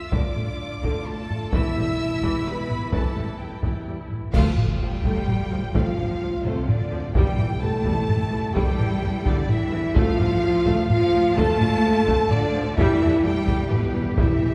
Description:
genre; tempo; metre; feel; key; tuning
cinematic, epic orchestral film score; 128 BPM; 3/4; straight; unclear; A4 = 439 Hz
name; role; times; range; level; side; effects
rich symphonic violin section; melody; 0.0-14.5 s; B4 to E6; -38 LUFS; equal; none
warm studio violin section; second line; 0.0-14.5 s; G4 to A5; -36 LUFS; equal; none
rich studio viola section; accompaniment; 0.0-14.5 s; D3 to G4; -33 LUFS; equal; none
mellow French horn section; sustained chords; 0.0-14.5 s; G3 to A4; -28 LUFS; equal; none
clear symphonic cello section; bass; 0.1-14.5 s; D2 to A3; -32 LUFS; equal; none
rich symphonic double bass section; bass; 0.1-14.5 s; E1 to E2; -33 LUFS; equal; none
taiko ensemble; drums; 0.1-14.5 s; none; -27 LUFS; equal; none
timpani; percussion; 1.5-2.2, 7.1-7.8, 12.8-14.5 s; E2; -36 LUFS; equal; none
clash cymbals and concert bass drum; percussion; 4.3-5.2 s; none; -33 LUFS; equal; none
room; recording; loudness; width
wet cathedral reverb, RT60 4.5 s; recorded in a church or concert hall; -22 LUFS; mono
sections
0.0-4.3 A section; 4.3-14.5 B section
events
band accent 4.3-4.8; timpani fill 12.8-14.5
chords
0.0 Dm; 1.5 Em; 4.3 Dm; 7.2 Em; 10.0 Dm; 12.8 Em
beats
| 0.12 0.59 1.06 | 1.53 1.99 2.46 | 2.93 3.40 3.87 | 4.34 4.81 5.28 | 5.74 6.21 6.68 | 7.15 7.62 8.09 | 8.56 9.03 9.49 | 9.96 10.43 10.90 | 11.37 11.84 12.31 | 12.78 13.24 13.71 | 14.18

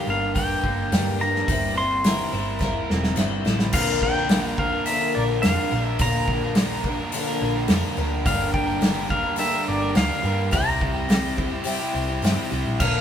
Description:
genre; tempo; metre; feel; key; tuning
folk rock and heartland rock; 106 BPM; 4/4; straight; unclear; A4 = 440 Hz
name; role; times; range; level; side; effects
pedal steel guitar; melody; 0.0-13.0 s; D5 to C6; -26 LUFS; left 1 dB; none
picked twelve-string acoustic guitar; accompaniment; 0.0-13.0 s; G2 to C5; -28 LUFS; left 5 dB; none
crunchy overdriven guitar; riff; 0.0-13.0 s; G2 to Bb4; -28 LUFS; right 3 dB; none
hollow-body short-scale picked electric bass; bass; 0.1-13.0 s; E1 to G2; -28 LUFS; equal; none
natural country drum kit; drums; 0.4-12.9 s; crash cymbal, hi-hat, kick drum, snare drum; -25 LUFS; equal; none
room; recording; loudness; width
moderate stone room reverb, RT60 1.3 s; band playing live in one room; -20 LUFS; side -9 dB against mid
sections
0.0-3.7 A section; 3.7-13.0 B section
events
drum fill 2.6-3.7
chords
0.0 Gm; 1.5 C7/G; 3.7 Bb; 8.3 Gm; 10.5 C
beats
0.36 0.93 | 1.49 2.05 2.62 3.18 | 3.75 4.31 4.88 5.44 | 6.01 6.57 7.14 7.71 | 8.27 8.84 9.41 9.98 | 10.54 11.11 11.68 12.25 | 12.82

